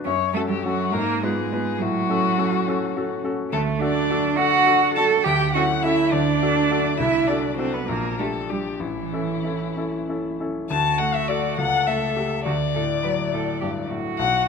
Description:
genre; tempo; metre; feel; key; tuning
quick classical-period movement for piano trio; 69 BPM (dotted quarters); 6/8; rubato; D major from 3.5 s; A4 = 440 Hz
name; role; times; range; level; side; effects
muted cello; second line; 0.0-14.5 s; E3 to B4; -24 LUFS; right 8 dB; none
clear concert grand piano; accompaniment; 0.0-14.5 s; A1 to Cb5; -25 LUFS; left 1 dB; none
muted violin; melody; 0.1-14.5 s; E4 to A5; -25 LUFS; left 8 dB; none
room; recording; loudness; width
moderate concert hall reverb, RT60 2.2 s; close, detailed microphones; -20 LUFS; side -5 dB against mid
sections
0.0-10.7 A section; 10.7-14.5 B section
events
none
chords
0.1 F#m; 0.9 Fdim/Ab; 1.8 F#m/A; 3.5 D; 5.2 A/D; 6.1 D; 7.0 D7/C; 7.9 Gm/Bb; 8.8 A; 10.7 D; 11.6 A7/C#; 12.5 D

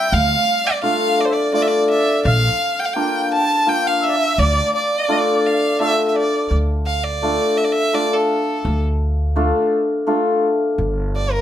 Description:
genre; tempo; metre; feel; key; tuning
klezmer; 84 BPM; 3/4; straight; D minor; A4 = 440 Hz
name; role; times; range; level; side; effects
clear violin; melody; 0.0-11.4 s; A4 to A5; -20 LUFS; right 2 dB; none
mellow accordion; second line; 0.0-6.5 s; D5 to A5; -23 LUFS; equal; none
hammered dulcimer; accompaniment; 0.0-10.4 s; G3 to F4; -19 LUFS; left 2 dB; none
upright bass; bass; 0.1-11.4 s; G1 to D2; -19 LUFS; equal; none
room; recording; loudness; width
moderate studio reverb, RT60 0.6 s; none; -16 LUFS; side -11 dB against mid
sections
0.0-6.5 A section; 6.5-11.4 B section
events
violin solo 6.5-11.4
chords
0.1 Dm; 2.2 Bb; 4.4 Dm; 10.8 G5

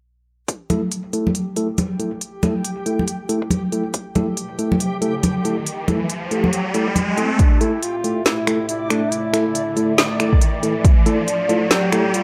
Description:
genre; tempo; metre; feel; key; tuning
deep dubstep; 139 BPM; 4/4; swing 60% on 16ths, half-time; unclear; A4 = 440 Hz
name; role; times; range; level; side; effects
deep house drum kit; drums; 0.5-12.2 s; finger snaps, hi-hat, snare drum; -24 LUFS; equal; none
electronic kick drum; drums; 0.5-0.6, 3.4-4.0, 6.9-7.5, 10.3-10.9 s; none; -17 LUFS; equal; high-pass filter on kick
backwards swelling texture; texture; 1.4-12.2 s; G4 to D5; -35 LUFS; equal; built-in reverb
mellow tine electric piano; stabs; 0.7-12.0 s; A3 to A4; -25 LUFS; equal; low-pass filter, dub echo
congas; percussion; 0.7-7.1 s; none; -24 LUFS; equal; none
riser; sound effects; 4.9-12.2 s; none; -28 LUFS; equal; none
warm duduk; melody; 7.2-12.2 s; C4 to G4; -27 LUFS; equal; dub echo
dark analog pad; sustained chords; 7.4-12.2 s; A3 to E5; -27 LUFS; equal; chorus
room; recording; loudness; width
moderate digital room reverb, RT60 1.3 s; faint mains hum; -20 LUFS; mono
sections
0.5-7.4 A section; 7.4-12.2 B section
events
filter sweep on tine electric piano 0.5-7.4; riser 5.1-7.4, 7.4-12.2; kick drops out 7.0-7.4; build-up 7.4-12.2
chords
0.5 A5

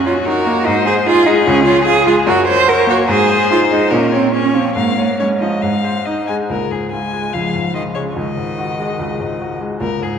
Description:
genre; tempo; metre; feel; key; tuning
quick classical-period movement for piano trio; 136-152 BPM; 4/4; rubato; Db major; A4 = 440 Hz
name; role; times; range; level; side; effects
rich violin; melody; 0.0-10.2 s; Gb4 to Ab5; -21 LUFS; left 5 dB; none
rich cello; second line; 0.0-10.2 s; Ab2 to C5; -16 LUFS; right 3 dB; none
bright baby grand piano; accompaniment; 0.0-10.2 s; Db2 to Db5; -18 LUFS; left 1 dB; none
room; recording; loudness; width
wet concert hall reverb, RT60 1.7 s; none; -13 LUFS; side -7 dB against mid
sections
0.0-6.5 A section; 6.5-10.2 B section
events
none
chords
0.0 Ebm7/Gb; 0.7 Ab; 1.5 Db; 2.3 Gb; 3.1 Ab; 3.9 Bbm; 4.8 Db/Ab; 5.6 Ab; 6.5 Db; 8.2 Ab5/Db

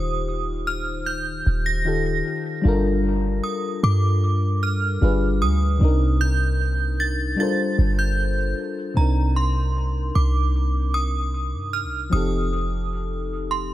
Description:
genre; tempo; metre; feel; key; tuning
contemporary R&B; 76 BPM; 4/4; straight; unclear; A4 = 439 Hz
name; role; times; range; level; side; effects
synth chime; melody; 0.0-13.7 s; Bb5 to Bb6; -28 LUFS; right 3 dB; ensemble chorus, dub echo
mellow FM electric piano; accompaniment; 0.0-13.7 s; C3 to C5; -26 LUFS; left 3 dB; chorus, dub echo
clean 808-style bass; bass; 0.0-13.7 s; Eb1 to G2; -21 LUFS; equal; none
room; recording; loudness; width
little or no reverb; echo-heavy mix; -20 LUFS; side -14 dB against mid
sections
0.0-9.0 A section; 9.0-13.7 B section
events
none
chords
0.0 Eb6; 2.6 Gm9; 5.0 G7b9; 5.8 Cm9; 7.4 Gm11; 9.0 Cm7; 12.1 F7

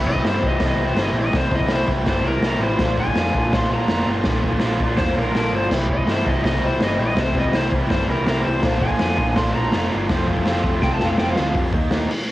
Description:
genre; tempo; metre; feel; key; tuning
garage rock duo or trio; 164 BPM; 4/4; straight; unclear; A4 = 440 Hz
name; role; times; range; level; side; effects
raw garage guitar; riff; 0.0-12.1 s; F2 to F4; -23 LUFS; equal; overdrive, cassette tape
hollow-body short-scale picked electric bass; bass; 0.0-12.1 s; F1 to G2; -26 LUFS; equal; overdrive
overdriven slide guitar; melody; 0.1-11.6 s; Bb4 to C6; -24 LUFS; left 1 dB; none
raw garage drum kit; drums; 0.1-12.2 s; crash cymbal, hi-hat, kick drum, snare drum; -21 LUFS; equal; cassette tape
room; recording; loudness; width
little or no reverb; home recording on cassette, vinyl crackle; -17 LUFS; side -16 dB against mid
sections
0.0-11.5 A section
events
drum fill 10.8-11.5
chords
0.0 C; 2.8 Bb; 5.7 C; 8.6 Bb; 10.1 F; 11.5 F5; 11.7 Eb5

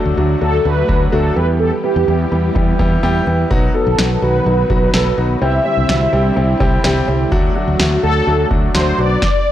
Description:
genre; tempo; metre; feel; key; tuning
synth-pop; 126 BPM; 4/4; straight; E minor; A4 = 441 Hz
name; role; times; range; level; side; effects
clear baby grand piano; accompaniment; 0.0-9.2 s; F#3 to A4; -19 LUFS; equal; none
string machine, violas; sustained chords; 0.0-9.2 s; D3 to G4; -23 LUFS; equal; ensemble chorus
fretless electric bass; bass; 0.1-9.2 s; B1 to E2; -17 LUFS; equal; none
mellow synth brass; melody; 0.4-9.5 s; G4 to E5; -18 LUFS; equal; chorus, phaser
electro analog drum machine; drums; 0.9-9.3 s; kick drum, snare drum; -18 LUFS; equal; none
room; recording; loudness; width
light reverb, digital ambience; dry, gritty hardware recording, cassette tape; -12 LUFS; side -12 dB against mid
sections
0.0-9.5 A section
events
none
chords
0.0 D; 1.4 Em; 3.5 B; 5.4 Cadd9; 7.3 D; 9.0 Bm

